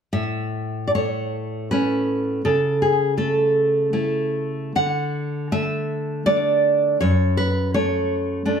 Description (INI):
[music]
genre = romantic piece for solo classical guitar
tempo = 78 BPM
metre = 3/4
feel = uneven beats, rubato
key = A major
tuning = A4 = 438 Hz
[part]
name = nylon-string guitar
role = solo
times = 0.1-8.6 s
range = F#2 to F#5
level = -19 LUFS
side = equal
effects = slapback echo
[sound]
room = light reverb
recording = close, detailed microphones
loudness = -19 LUFS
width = side -7 dB against mid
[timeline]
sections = 0.1-8.6 A section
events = none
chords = 0.1 A; 2.4 A/C#; 4.8 D; 7.0 D/F# (rootless)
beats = | 0.11 0.93 1.70 | 2.44 3.17 3.92 | 4.75 5.52 6.25 | 7.00 7.73 8.44